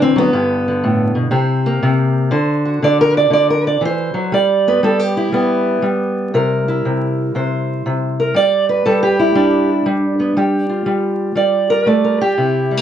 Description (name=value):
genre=acoustic country blues, solo or duo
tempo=119 BPM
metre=4/4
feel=swing 66% on 8ths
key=unclear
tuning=A4 = 440 Hz
part: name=fingerpicked steel-string acoustic guitar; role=solo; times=0.0-12.8 s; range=G2 to D5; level=-13 LUFS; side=right 1 dB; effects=none
room=light reverb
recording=vinyl crackle, nothing above 10.6 kHz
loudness=-13 LUFS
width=side -9 dB against mid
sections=0.0-4.3 A section; 4.3-12.8 B section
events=steel-string acoustic guitar solo 0.0-4.3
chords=0.3 G; 1.3 Bbsus2/C; 2.3 D7; 4.3 G; 6.3 C7; 8.3 G7